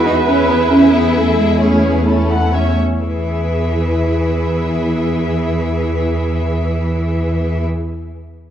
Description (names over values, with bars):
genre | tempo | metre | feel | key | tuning
quick classical-period movement for symphony orchestra | 121-142 BPM | 4/4 | straight | E major | A4 = 440 Hz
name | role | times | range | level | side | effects
warm chamber violin section | melody | 0.0-7.6 s | C#5 to F#5 | -25 LUFS | left 6 dB | none
rich symphonic violin section | second line | 0.0-7.6 s | C#4 to C#5 | -23 LUFS | left 4 dB | none
warm chamber viola section | accompaniment | 0.0-7.6 s | C#4 to B4 | -22 LUFS | right 2 dB | none
clear studio cello section | bass | 0.0-7.6 s | E3 to D#4 | -18 LUFS | right 1 dB | none
warm chamber double bass section | bass | 0.0-7.6 s | E2 | -18 LUFS | right 1 dB | none
room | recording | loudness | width
moderate scoring stage reverb, RT60 2.0 s | dark, warm production | -13 LUFS | side -10 dB against mid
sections
0.0-3.0 A section; 3.0-6.9 B section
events
slowing down 0.0-3.0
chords
0.0 E; 1.2 A/E; 3.0 E